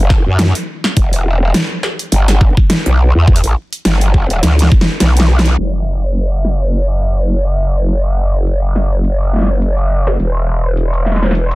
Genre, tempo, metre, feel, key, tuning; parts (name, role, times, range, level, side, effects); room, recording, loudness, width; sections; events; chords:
glitch hop; 104 BPM; 4/4; swing 56% on 16ths; A4 = 440 Hz
growl bass; bass; 0.0-11.6 s; E1 to F#2; -12 LUFS; equal; chorus, overdrive
dubstep drum kit; drums; 0.1-11.6 s; hi-hat, snare drum; -17 LUFS; equal; overdrive
electronic kick drum; drums; 0.1-4.8 s; -11 LUFS; equal; overdrive
little or no reverb; dense, heavily limited modern master, vinyl crackle, low-pass filter; -11 LUFS; side -20 dB against mid
0.0-5.6 A section; 5.6-11.6 B section
drum fill 4.4-5.6; band accent 5.4; filter sweep 5.6-11.6